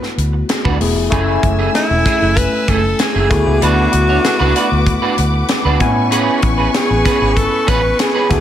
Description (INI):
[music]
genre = polished 1980s jazz-funk pop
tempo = 96 BPM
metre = 4/4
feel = straight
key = A major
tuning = A4 = 439 Hz
[part]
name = breathy alto saxophone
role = melody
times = 0.0-8.4 s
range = E4 to B4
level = -18 LUFS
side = equal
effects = none
[part]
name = overdriven tine electric piano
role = accompaniment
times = 0.0-8.4 s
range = A3 to G#5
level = -19 LUFS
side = left 3 dB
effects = analog chorus
[part]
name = electric guitar at the edge of break-up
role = riff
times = 0.0-8.3 s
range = A3 to C#5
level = -21 LUFS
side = right 6 dB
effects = ensemble chorus
[part]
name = tight funk drum kit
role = drums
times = 0.0-8.4 s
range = hi-hat, kick drum, snare drum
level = -18 LUFS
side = equal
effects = gated reverb
[part]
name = vintage muted fingered electric bass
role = bass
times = 0.2-8.4 s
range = E1 to A2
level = -17 LUFS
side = equal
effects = none
[part]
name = warm studio string section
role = sustained chords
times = 1.1-8.4 s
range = A3 to E6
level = -23 LUFS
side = left 1 dB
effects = none
[sound]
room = light reverb, studio reverb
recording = none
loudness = -12 LUFS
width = side -10 dB against mid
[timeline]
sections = 0.0-8.4 A section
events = none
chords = 0.0 D6; 1.1 F#m9; 3.3 D6; 5.8 Amaj9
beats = 0.50 | 1.12 1.75 2.37 3.00 | 3.62 4.25 4.87 5.50 | 6.12 6.75 7.37 8.00